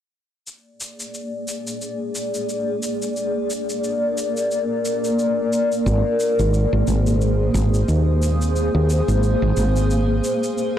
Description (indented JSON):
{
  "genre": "organic downtempo",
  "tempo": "89 BPM",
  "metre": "4/4",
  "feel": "swing 57% on 16ths",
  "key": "Bb mixolydian",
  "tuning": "A4 = 437 Hz",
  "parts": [
    { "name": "granular cloud pad", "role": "sustained chords", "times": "1.1-10.8 s", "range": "Bb3 to D5", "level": "-21 LUFS", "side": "left 1 dB", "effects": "built-in reverb" },
    { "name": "shaker", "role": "drums", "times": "0.5-10.7 s", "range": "none", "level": "-31 LUFS", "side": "left 1 dB", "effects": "overdrive, soft clipping on snare" },
    { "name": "woody fretless electric bass", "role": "bass", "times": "5.9-10.2 s", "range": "Ab1 to Eb2", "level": "-18 LUFS", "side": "equal", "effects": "tube saturation" }
  ],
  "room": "light reverb, digital ambience",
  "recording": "blown-out, overdriven recording, overdrive",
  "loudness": "-18 LUFS",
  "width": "side -10 dB against mid",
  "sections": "0.5-10.8 A section",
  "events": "filter sweep on ambient pad 0.5-10.8",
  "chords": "0.5 Bb7; 5.9 Abadd9"
}